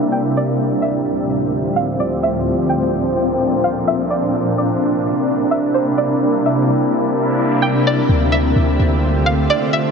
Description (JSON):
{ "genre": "hip hop", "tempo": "128 BPM", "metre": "4/4", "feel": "half-time", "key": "D minor", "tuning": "A4 = 440 Hz", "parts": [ { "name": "string-like resonator pluck", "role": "melody", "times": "0.0-9.9 s", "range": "C5 to G5", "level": "-23 LUFS", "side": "right 1 dB", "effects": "chorus, phaser, low-pass filter, ping-pong delay" }, { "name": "shimmering ambient pad", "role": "sustained chords", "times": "0.0-9.9 s", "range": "D2 to E5", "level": "-16 LUFS", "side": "equal", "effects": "chorus, built-in reverb" }, { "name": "wind-like tuned noise texture", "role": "texture", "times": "0.0-9.9 s", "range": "C4 to E5", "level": "-26 LUFS", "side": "left 2 dB", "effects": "built-in reverb" }, { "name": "clean 808-style bass", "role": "bass", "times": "8.1-9.5 s", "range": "D2", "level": "-16 LUFS", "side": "equal", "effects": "none" } ], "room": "moderate huge ambient reverb, RT60 8.6 s", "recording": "low-pass filter", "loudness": "-15 LUFS", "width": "side -5 dB against mid", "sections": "0.0-8.1 A section; 8.1-9.9 B section", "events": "filter sweep 0.0-8.1", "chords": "0.0 C9; 0.6 Dm11; 2.5 Bbmaj9; 4.3 C9; 8.1 Dm11" }